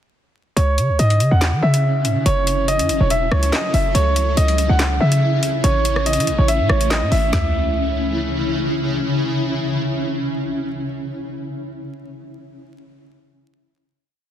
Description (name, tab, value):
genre	hip hop, drill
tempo	142 BPM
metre	4/4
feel	half-time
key	C# minor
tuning	A4 = 439 Hz
part	clear concert grand piano	melody	0.6-8.6 s	C#5 to F#5	-21 LUFS	right 1 dB	low-pass filter
part	granular cloud pad	sustained chords	1.1-11.5 s	C#3 to A4	-23 LUFS	left 1 dB	built-in reverb
part	short 808-style bass	bass	0.6-9.0 s	E1 to E3	-18 LUFS	equal	none
part	drill drum kit	drums	0.6-7.4 s	handclaps, hi-hat, rim click, snare drum, toms	-24 LUFS	left 1 dB	none
room	light reverb, digital ambience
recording	dense, heavily limited modern master, vinyl crackle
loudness	-16 LUFS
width	side -10 dB against mid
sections	0.6-7.3 hook; 7.3-10.7 final chord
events	none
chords	0.6 C#m; 2.3 F#m7; 3.9 C#m; 5.6 A; 7.3 C#m